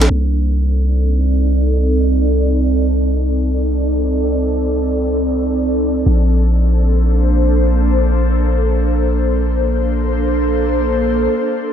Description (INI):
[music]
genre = drum and bass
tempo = free time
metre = none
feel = none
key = C dorian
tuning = A4 = 439 Hz
[part]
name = ethereal airy pad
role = sustained chords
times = 0.0-11.7 s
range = Bb3 to D5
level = -17 LUFS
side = equal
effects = ensemble chorus, built-in reverb
[part]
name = long sustained 808-style bass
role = bass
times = 0.0-11.3 s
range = Bb1 to C2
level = -15 LUFS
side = equal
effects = none
[sound]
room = light reverb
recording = low-pass filter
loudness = -13 LUFS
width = side -9 dB against mid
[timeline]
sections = 0.1-11.7 A section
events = filter sweep on ambient pad 0.1-11.7; filter sweep 0.1-11.7; break 11.3-11.7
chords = 0.1 Cm69; 6.1 Bbmaj9